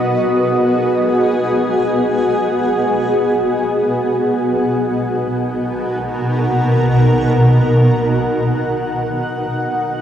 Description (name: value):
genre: ambient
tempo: free time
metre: none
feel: none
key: B major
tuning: A4 = 440 Hz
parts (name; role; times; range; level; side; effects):
- granular cloud pad; solo; 0.0-10.0 s; B2 to F#5; -14 LUFS; equal; built-in reverb
room: wet huge ambient reverb, RT60 8.9 s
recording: dark, warm production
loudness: -14 LUFS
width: side -9 dB against mid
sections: 0.0-10.0 A section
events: none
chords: 0.0 B6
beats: free time